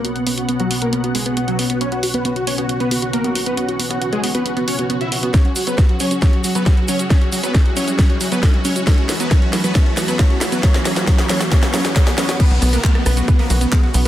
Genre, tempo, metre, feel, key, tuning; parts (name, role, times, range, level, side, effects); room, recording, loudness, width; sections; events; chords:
uplifting trance; 136 BPM; 4/4; straight; A4 = 441 Hz
supersaw chords; melody; 0.0-14.1 s; F#3 to E5; -22 LUFS; equal; sidechain pumping, low-pass filter
analog string pad; sustained chords; 0.0-14.1 s; B2 to F#5; -26 LUFS; equal; ensemble chorus, sidechain pumping
wide unison pluck; arpeggios; 0.0-14.1 s; F#3 to F#4; -24 LUFS; right 1 dB; sidechain pumping
house drum kit; drums; 0.0-14.1 s; crash cymbal, handclaps, hi-hat, rim click, shaker, snare drum; -23 LUFS; equal; sidechain pumping on perc, sidechain pumping on hats, sidechain pumping on cymbals
riser and downlifter; sound effects; 3.0-14.1 s; -30 LUFS; left 1 dB
electronic kick drum; drums; 5.3-13.8 s; -14 LUFS; equal
tight sequencer bass; bass; 12.5-14.1 s; B1; -16 LUFS; equal; sidechain pumping
light reverb, digital ambience; dense, heavily limited modern master; -14 LUFS; side -12 dB against mid
0.0-12.4 A section; 12.4-14.1 B section
build-up 0.0-12.4; filter sweep on supersaw synth 0.0-12.4; filter sweep on synth pluck 0.0-12.4; riser 3.0-12.4; drum fill 5.3-12.4; drop 12.4-14.1
0.0 Bsus2; 5.3 F#sus2; 8.9 Eadd9; 12.4 Bsus2